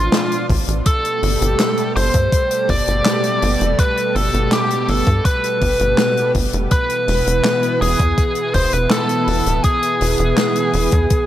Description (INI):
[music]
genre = synthwave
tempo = 82 BPM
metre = 4/4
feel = straight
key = unclear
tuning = A4 = 440 Hz
[part]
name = biting lead guitar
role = melody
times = 0.0-11.3 s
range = F4 to D5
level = -19 LUFS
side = equal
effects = overdrive, vintage 12-bit sampler grit, tape echo
[part]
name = analog string pad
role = sustained chords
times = 0.0-11.3 s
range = B2 to D4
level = -22 LUFS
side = right 1 dB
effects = ensemble chorus, sidechain pumping
[part]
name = tight sequencer bass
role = bass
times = 0.0-11.1 s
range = D1 to G2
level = -19 LUFS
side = equal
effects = none
[part]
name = open jazz drum kit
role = drums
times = 0.1-11.2 s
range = handclaps, hi-hat, snare drum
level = -22 LUFS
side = left 2 dB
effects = none
[part]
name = electronic kick drum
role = drums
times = 0.5-11.3 s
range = none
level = -18 LUFS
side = equal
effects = none
[sound]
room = light reverb, small room ambience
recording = none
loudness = -14 LUFS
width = side -12 dB against mid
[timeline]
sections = 0.0-11.3 A section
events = none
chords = 0.0 Dm; 0.9 Gadd9; 6.7 E